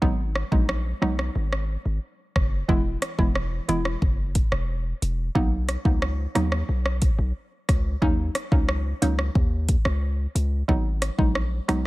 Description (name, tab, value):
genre	dancehall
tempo	90 BPM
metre	4/4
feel	straight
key	unclear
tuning	A4 = 444 Hz
part	hollow square pluck	accompaniment	0.0-11.9 s	E3 to E4	-27 LUFS	right 1 dB	chorus
part	hard-hitting 808-style bass	bass	0.0-11.9 s	E1 to D#2	-25 LUFS	equal	none
part	afro-pop drum kit	drums	0.0-11.8 s	hi-hat, kick drum, rim click	-24 LUFS	equal	none
room	digital ambience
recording	none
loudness	-22 LUFS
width	side -19 dB against mid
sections	0.0-11.9 A section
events	none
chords	0.0 Abm7; 2.7 E; 5.4 Bmaj7; 8.0 Ebm7; 10.7 Abm7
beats	| 0.02 0.69 1.35 2.02 | 2.69 3.35 4.02 4.69 | 5.35 6.02 6.69 7.35 | 8.02 8.69 9.35 10.02 | 10.69 11.35